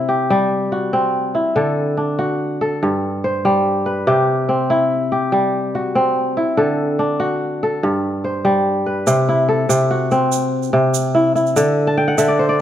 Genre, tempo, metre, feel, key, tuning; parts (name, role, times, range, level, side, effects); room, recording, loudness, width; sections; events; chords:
west african traditional, West African string and xylophone music; 96 BPM (dotted quarters); 12/8; straight; C lydian; A4 = 440 Hz
kora; arpeggios; 0.0-12.6 s; G2 to A5; -15 LUFS; equal
egg shaker; percussion; 9.1-12.3 s; -27 LUFS; right 12 dB
moderate recital hall reverb, RT60 1.7 s; dark, warm production; -15 LUFS; side -10 dB against mid
0.0-9.1 A section; 9.1-12.6 B section
kora fill 11.9-12.6
0.0 C; 1.6 D; 2.8 G; 4.1 C; 6.6 D; 7.8 G; 9.1 C; 11.6 D9